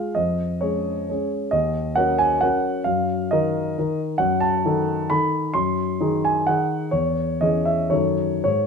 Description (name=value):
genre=classical, romantic triple-time dance for piano with dotted rhythms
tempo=103-142 BPM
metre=3/4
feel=rubato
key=unclear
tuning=A4 = 442 Hz
part: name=dark concert grand piano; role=solo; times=0.0-8.7 s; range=Eb2 to B#5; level=-19 LUFS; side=equal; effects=none
room=light reverb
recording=close, detailed microphones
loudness=-19 LUFS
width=side -5 dB against mid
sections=0.0-8.7 A section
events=none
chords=0.2 Db/F; 1.5 Ebm7; 2.9 Ebm/Gb; 4.2 D#dim/F#; 5.5 G#7/F#; 6.9 C#m/E; 7.9 D#m7b5/F#